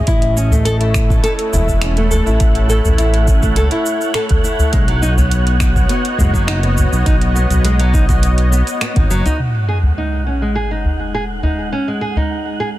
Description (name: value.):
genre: organic downtempo.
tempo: 103 BPM.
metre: 4/4.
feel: straight.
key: unclear.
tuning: A4 = 440 Hz.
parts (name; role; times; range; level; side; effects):
warm analog pad; sustained chords; 0.0-12.8 s; G#3 to D#5; -24 LUFS; left 1 dB; chorus, sidechain pumping.
smooth gliding synth bass; bass; 0.0-9.2 s; E1 to C#2; -15 LUFS; equal; sidechain pumping.
nylon-string guitar; arpeggios; 0.1-12.7 s; F#3 to A4; -20 LUFS; left 1 dB; low-pass filter, ping-pong delay.
afro-pop drum kit; drums; 0.1-9.4 s; finger snaps, hi-hat, shaker; -25 LUFS; right 1 dB; overdrive, low-pass filter on hats, low-pass filter on perc, soft clipping on snare, low-pass filter on snare.
electronic kick drum; drums; 0.1-9.1 s; none; -15 LUFS; equal; overdrive.
wind-like tuned noise texture; texture; 1.2-12.8 s; F#5; -26 LUFS; right 6 dB; built-in reverb.
udu; percussion; 0.5-12.3 s; none; -18 LUFS; equal; none.
sub drop; sound effects; 9.4-11.7 s; none; -20 LUFS; equal; none.
room: little or no reverb.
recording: dense, heavily limited modern master.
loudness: -13 LUFS.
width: side -15 dB against mid.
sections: 0.0-9.4 A section; 9.4-12.8 B section.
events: impact 9.4-11.7; filter sweep on analog synth pad 9.4-12.8.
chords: 0.1 A; 4.7 B; 9.4 G#sus4.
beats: | 0.07 0.66 1.24 1.82 | 2.40 2.99 3.57 4.15 | 4.74 5.32 5.90 6.48 | 7.07 7.65 8.23 8.81 | 9.39 9.98 10.56 11.14 | 11.72 12.31.